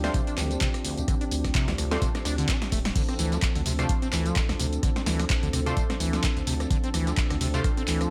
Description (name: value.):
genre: acid house.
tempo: 128 BPM.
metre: 4/4.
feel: swing 56% on 16ths.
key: D minor.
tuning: A4 = 440 Hz.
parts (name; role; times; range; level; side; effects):
warm analog pad; sustained chords; 0.0-8.1 s; F3 to A4; -36 LUFS; equal; chorus, sidechain pumping.
acid bass, saw; riff; 0.0-8.1 s; D2 to D4; -34 LUFS; equal; overdrive, subtle chorus, vintage 12-bit sampler grit, tape echo.
band-passed chord stab; stabs; 0.0-7.6 s; A3 to C5; -36 LUFS; equal; chorus, phaser, tape echo.
saturated sub bass; bass; 0.0-8.1 s; D1 to D2; -31 LUFS; equal; sidechain pumping.
dusty soul sampler-style drum kit; drums; 0.0-8.0 s; hi-hat, snare drum, tambourine; -43 LUFS; equal; none.
punchy analog drum machine; drums; 0.0-8.1 s; crash cymbal, handclaps, hi-hat, rim click, snare drum, tambourine; -34 LUFS; equal; none.
warbly tape-like pad; texture; 0.0-3.0 s; C4 to A5; -47 LUFS; equal; none.
electronic kick drum; drums; 0.1-7.7 s; none; -30 LUFS; equal; none.
room: little or no reverb.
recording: none.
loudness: -26 LUFS.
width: mono.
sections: 0.0-3.0 A section; 3.0-8.1 B section.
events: drum fill 2.6-3.0; drop 3.0-8.1.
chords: 0.0 Dm7.